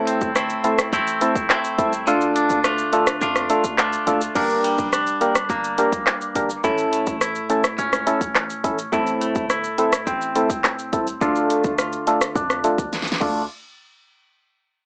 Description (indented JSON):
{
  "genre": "dancehall",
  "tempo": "105 BPM",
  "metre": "4/4",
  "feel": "straight",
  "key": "D minor",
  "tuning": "A4 = 440 Hz",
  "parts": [
    { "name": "percussive organ stab", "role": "accompaniment", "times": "0.0-13.4 s", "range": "A3 to Bb4", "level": "-22 LUFS", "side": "equal", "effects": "chorus, sidechain pumping, low-pass filter, cassette tape" },
    { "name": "twangy electric guitar", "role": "arpeggios", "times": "0.0-13.4 s", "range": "G2 to F4", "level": "-26 LUFS", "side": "equal", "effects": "low-pass filter, cassette tape" },
    { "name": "pop drum kit", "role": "drums", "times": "0.1-13.3 s", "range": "crash cymbal, handclaps, hi-hat, kick drum, rim click, shaker, snare drum", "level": "-25 LUFS", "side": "equal", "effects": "cassette tape" },
    { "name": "hard-hitting 808-style bass", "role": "bass", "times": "0.2-13.5 s", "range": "F1 to F2", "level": "-36 LUFS", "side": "equal", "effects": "none" }
  ],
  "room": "light reverb",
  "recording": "home recording on cassette, small speaker sound",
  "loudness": "-21 LUFS",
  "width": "mono",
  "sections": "0.0-4.4 A section; 4.4-13.5 B section; 13.5-14.9 C section",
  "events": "kick muted 2.1-4.4; filter sweep 4.4-13.5; drum fill 12.9-13.5",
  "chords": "0.0 Am; 2.1 Dm; 4.4 Gm; 6.6 A; 8.9 Am; 11.2 Dm; 13.5 N.C."
}